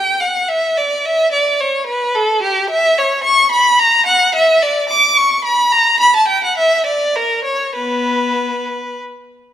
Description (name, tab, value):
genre	classical, baroque-style suite movement for unaccompanied violin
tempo	94-111 BPM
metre	3/4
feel	rubato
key	B minor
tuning	A4 = 437 Hz
part	rich violin	solo	0.0-9.0 s	B3 to D6	-12 LUFS	equal	none
room	moderate recital hall reverb, RT60 1.6 s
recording	none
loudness	-12 LUFS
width	side -10 dB against mid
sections	0.0-9.5 A section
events	none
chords	none